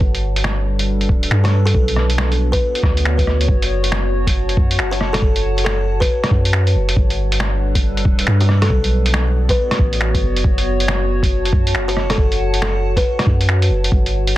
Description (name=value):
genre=future garage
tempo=138 BPM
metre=4/4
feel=swing 62% on 16ths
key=F# phrygian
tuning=A4 = 441 Hz
part: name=warbly tape-like pad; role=sustained chords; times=0.0-14.4 s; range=G3 to A5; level=-24 LUFS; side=left 1 dB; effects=chorus, built-in reverb, sidechain pumping
part: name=soft 808-style bass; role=bass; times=0.0-14.4 s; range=D1 to G2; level=-18 LUFS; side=equal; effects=none
part: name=electronic kick drum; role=drums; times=0.0-14.0 s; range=none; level=-17 LUFS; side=equal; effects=overdrive
part: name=lo-fi sampler-style drum kit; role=drums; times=0.1-14.3 s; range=finger snaps, hi-hat, rim click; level=-21 LUFS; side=equal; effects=overdrive, soft clipping on snare
part: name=buzzing kalimba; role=melody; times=1.4-13.3 s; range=A4 to C#5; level=-24 LUFS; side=left 1 dB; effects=tape echo
room=digital ambience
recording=dense, heavily limited modern master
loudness=-14 LUFS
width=side -15 dB against mid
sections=0.0-3.5 A section; 3.5-14.4 B section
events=none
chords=0.0 Gmaj7; 1.7 Bm7; 3.5 F#m; 7.0 Gmaj7; 8.7 Bm7; 10.4 F#m